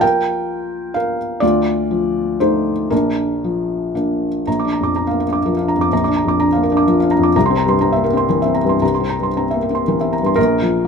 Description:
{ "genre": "neoclassical minimalist piano", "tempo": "112-131 BPM", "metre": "3/4", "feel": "rubato", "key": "Bb major", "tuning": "A4 = 440 Hz", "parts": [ { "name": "felt-muted upright piano", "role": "solo", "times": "0.0-10.9 s", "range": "Bb1 to D6", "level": "-15 LUFS", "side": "left 1 dB", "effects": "none" } ], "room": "light reverb", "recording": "minimal, uncompressed stereo recording", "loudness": "-15 LUFS", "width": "side -6 dB against mid", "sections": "0.0-4.5 A section; 4.5-10.4 B section", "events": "none", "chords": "0.0 Fsus4; 1.4 Dm; 2.9 Bb; 7.4 C7" }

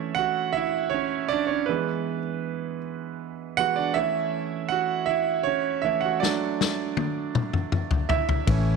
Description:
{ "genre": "six-eight pop ballad", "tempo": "53 BPM (dotted quarters)", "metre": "6/8", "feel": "straight", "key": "A major", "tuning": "A4 = 439 Hz", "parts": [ { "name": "clear concert grand piano", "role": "accompaniment", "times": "0.0-8.8 s", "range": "E3 to F#5", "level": "-25 LUFS", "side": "right 9 dB", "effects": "none" }, { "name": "natural country drum kit", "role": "drums", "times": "6.2-8.7 s", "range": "kick drum, ride cymbal, snare drum, toms", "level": "-25 LUFS", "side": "left 5 dB", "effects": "none" }, { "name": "warm studio string section", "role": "sustained chords", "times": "8.5-8.8 s", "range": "E3 to E4", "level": "-38 LUFS", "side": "left 7 dB", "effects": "none" }, { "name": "vintage muted fingered electric bass", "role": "bass", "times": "8.5-8.8 s", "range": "A1", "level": "-22 LUFS", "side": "left 2 dB", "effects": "none" } ], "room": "light reverb, studio ambience", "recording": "1960s-style stereo with parts hard left and right", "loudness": "-23 LUFS", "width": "side -4 dB against mid", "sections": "0.0-8.8 A section", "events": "grand piano solo 0.0-8.8; drum fill 6.2-8.5", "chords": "0.0 A; 1.7 E; 4.0 A; 6.2 D" }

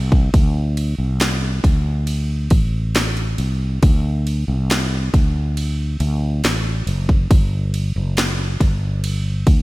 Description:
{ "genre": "pop ballad", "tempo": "69 BPM", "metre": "4/4", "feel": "straight", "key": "unclear", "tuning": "A4 = 440 Hz", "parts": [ { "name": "fretless electric bass", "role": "bass", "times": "0.0-9.6 s", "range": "F#1 to D2", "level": "-19 LUFS", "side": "equal", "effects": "none" }, { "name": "house drum kit", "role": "drums", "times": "0.1-9.6 s", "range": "kick drum, ride cymbal, snare drum", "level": "-18 LUFS", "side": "equal", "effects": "gated reverb" } ], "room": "little or no reverb", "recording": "bright 1980s-style digital production", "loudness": "-16 LUFS", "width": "side -20 dB against mid", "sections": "0.0-9.6 A section", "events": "none", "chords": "none" }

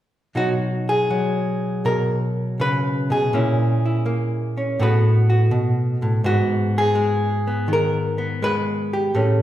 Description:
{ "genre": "solo jazz", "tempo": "82 BPM", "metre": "4/4", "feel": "swing 68% on 8ths, rubato", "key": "B major", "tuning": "A4 = 440 Hz", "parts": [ { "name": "hollow-body jazz guitar", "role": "solo", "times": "0.3-9.4 s", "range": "G#2 to B4", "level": "-18 LUFS", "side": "equal", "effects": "none" } ], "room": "wet recital hall reverb, RT60 1.5 s", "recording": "recorded in a church or concert hall", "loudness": "-18 LUFS", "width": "side -12 dB against mid", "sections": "0.4-9.4 A section", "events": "none", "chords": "0.4 B69; 3.3 A#m7b5; 4.8 Asus2; 6.2 G#m9" }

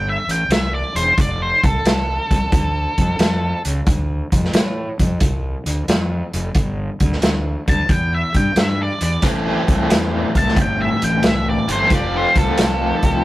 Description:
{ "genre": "blues rock power trio and southern rock", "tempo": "89 BPM", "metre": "4/4", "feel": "swing 68% on 8ths", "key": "A minor", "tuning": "A4 = 444 Hz", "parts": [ { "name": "octave-fuzz lead guitar", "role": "melody", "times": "0.0-3.6, 7.7-13.2 s", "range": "A4 to A5", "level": "-20 LUFS", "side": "equal", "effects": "distortion" }, { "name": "fuzz fingered electric bass", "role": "bass", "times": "0.0-13.2 s", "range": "E1 to A2", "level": "-22 LUFS", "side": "equal", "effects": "overdrive" }, { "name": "vintage drum kit", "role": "drums", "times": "0.3-13.1 s", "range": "hi-hat, kick drum, snare drum", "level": "-18 LUFS", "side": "equal", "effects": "none" }, { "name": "biting overdriven guitar", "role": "riff", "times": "9.2-13.2 s", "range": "A2 to F4", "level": "-19 LUFS", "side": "left 1 dB", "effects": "tremolo" } ], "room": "moderate studio reverb, RT60 0.6 s", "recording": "rough rehearsal-room recording", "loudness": "-16 LUFS", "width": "side -17 dB against mid", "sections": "0.0-13.2 A section", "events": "none", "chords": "0.0 Am; 1.2 F; 3.9 Dm; 6.5 G5; 9.2 Am; 11.9 F" }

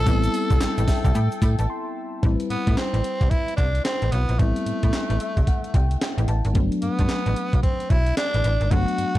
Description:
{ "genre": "R&B, new jack swing", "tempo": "111 BPM", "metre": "4/4", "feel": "swing 62% on 16ths", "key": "A dorian", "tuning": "A4 = 439 Hz", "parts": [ { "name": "raspy tenor saxophone", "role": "melody", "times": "0.0-9.2 s", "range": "A3 to A4", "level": "-28 LUFS", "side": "equal", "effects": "none" }, { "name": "mellow FM electric piano", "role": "accompaniment", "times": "0.0-9.2 s", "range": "F#3 to C6", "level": "-28 LUFS", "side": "left 3 dB", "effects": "chorus" }, { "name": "phased analog pad", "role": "sustained chords", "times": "0.0-2.2 s", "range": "A4 to A5", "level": "-36 LUFS", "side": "left 1 dB", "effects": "phaser, chorus" }, { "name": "slap-like FM bass", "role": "bass", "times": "0.0-9.2 s", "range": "G1 to A2", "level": "-22 LUFS", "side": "equal", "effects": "none" }, { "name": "breakbeat sampler-style drum kit", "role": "drums", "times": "0.1-9.2 s", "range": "handclaps, hi-hat, kick drum, snare drum, tambourine", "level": "-23 LUFS", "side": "equal", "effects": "none" }, { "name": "egg shaker", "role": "percussion", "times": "0.1-1.7 s", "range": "none", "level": "-48 LUFS", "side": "right 8 dB", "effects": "none" } ], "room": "little or no reverb", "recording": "dark, warm production", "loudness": "-20 LUFS", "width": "side -15 dB against mid", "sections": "0.0-2.2 A section; 2.2-9.2 B section", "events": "FM electric piano fill 0.6-2.2, 4.9-6.6; break 1.7-2.2", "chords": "0.0 Am9; 6.6 Gmaj7" }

